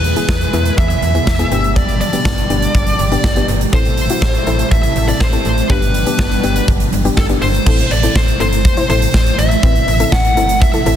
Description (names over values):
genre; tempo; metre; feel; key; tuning
synth-pop; 122 BPM; 4/4; straight; A minor; A4 = 441 Hz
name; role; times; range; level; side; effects
fuzz lead guitar; melody; 0.0-11.0 s; A4 to F#5; -19 LUFS; left 1 dB; distortion
phased analog pad; sustained chords; 0.0-7.6 s; B2 to A4; -24 LUFS; left 1 dB; phaser, chorus
slap-like FM bass; bass; 0.0-11.0 s; G1 to E2; -18 LUFS; equal; none
huge arena drum kit; drums; 0.0-11.0 s; crash cymbal, hi-hat, kick drum, snare drum; -15 LUFS; equal; none
soft round pluck; accompaniment; 0.2-11.0 s; B3 to C5; -22 LUFS; left 4 dB; chorus
room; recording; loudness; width
light reverb, small room ambience; dense, heavily limited modern master; -12 LUFS; side -10 dB against mid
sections
0.0-7.7 A section; 7.7-11.0 B section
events
none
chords
0.0 E; 1.5 G; 3.7 Am; 5.7 G; 7.7 Am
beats
0.29 0.78 1.27 | 1.76 2.25 2.75 3.24 | 3.73 4.22 4.71 5.21 | 5.70 6.19 6.68 7.17 | 7.67 8.16 8.65 9.14 | 9.63 10.12 10.62